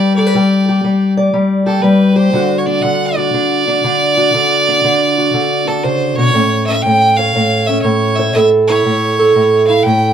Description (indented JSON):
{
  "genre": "acoustic country blues, solo or duo",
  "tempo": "120 BPM",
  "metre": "4/4",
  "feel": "swing 66% on 8ths",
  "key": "D major",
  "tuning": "A4 = 437 Hz",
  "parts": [
    { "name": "clear fiddle", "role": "melody", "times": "0.0-10.1 s", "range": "A4 to G5", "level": "-15 LUFS", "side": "right 2 dB", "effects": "none" },
    { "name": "fingerpicked steel-string acoustic guitar", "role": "accompaniment", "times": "0.0-10.1 s", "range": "A2 to D5", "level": "-12 LUFS", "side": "equal", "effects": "none" }
  ],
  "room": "moderate studio reverb, RT60 0.5 s",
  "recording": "band playing live in one room",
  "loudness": "-10 LUFS",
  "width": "side -8 dB against mid",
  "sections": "0.0-10.1 A section",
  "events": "none",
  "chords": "0.0 G5; 2.3 D; 6.3 A",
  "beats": "| 0.33 0.83 1.33 1.83 | 2.33 2.83 3.33 3.84 | 4.34 4.84 5.34 5.84 | 6.34 6.85 7.35 7.85 | 8.35 8.85 9.35 9.86"
}